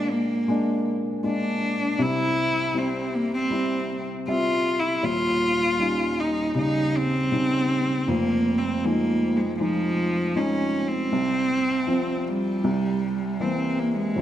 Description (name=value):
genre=pop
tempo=79 BPM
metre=4/4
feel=straight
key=F minor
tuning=A4 = 440 Hz
part: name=warm cello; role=melody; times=0.0-14.2 s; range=F3 to F4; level=-24 LUFS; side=equal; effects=digital delay
part: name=felt-muted upright piano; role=accompaniment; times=0.0-14.2 s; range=Eb1 to E5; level=-25 LUFS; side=equal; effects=none
room=moderate scoring stage reverb, RT60 1.9 s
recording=dark, warm production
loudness=-22 LUFS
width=side -11 dB against mid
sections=0.0-14.2 A section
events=none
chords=0.0 Bb7; 2.0 C; 5.0 Eb7; 8.1 Fm7; 11.1 F5/C; 12.6 C7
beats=0.48 1.24 | 2.00 2.76 3.52 4.28 | 5.04 5.80 6.56 7.32 | 8.08 8.84 9.60 10.36 | 11.12 11.88 12.63 13.39 | 14.15